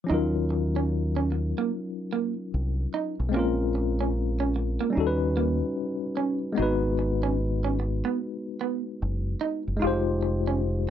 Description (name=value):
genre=R&B, neo-soul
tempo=74 BPM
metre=4/4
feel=swing 62% on 16ths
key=unclear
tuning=A4 = 440 Hz
part: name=tine electric piano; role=accompaniment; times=0.0-10.9 s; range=F3 to C5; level=-28 LUFS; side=left 4 dB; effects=overdrive, fast stereo tremolo
part: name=electric guitar through a small old amp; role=second line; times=0.1-10.6 s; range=Bb3 to F4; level=-29 LUFS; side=right 8 dB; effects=none
part: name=deep dub fingered electric bass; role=bass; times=0.1-10.9 s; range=F1 to Eb2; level=-28 LUFS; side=equal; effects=none
room=little or no reverb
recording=dry, close 1970s-style studio recording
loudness=-25 LUFS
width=side -10 dB against mid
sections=0.1-10.9 A section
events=none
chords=0.1 Ebm9; 3.3 Bbm9; 5.0 Eb7alt; 6.6 Abm7; 9.8 Fm9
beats=| 0.09 0.90 1.71 2.52 | 3.33 4.14 4.95 5.76 | 6.58 7.39 8.20 9.01 | 9.82 10.63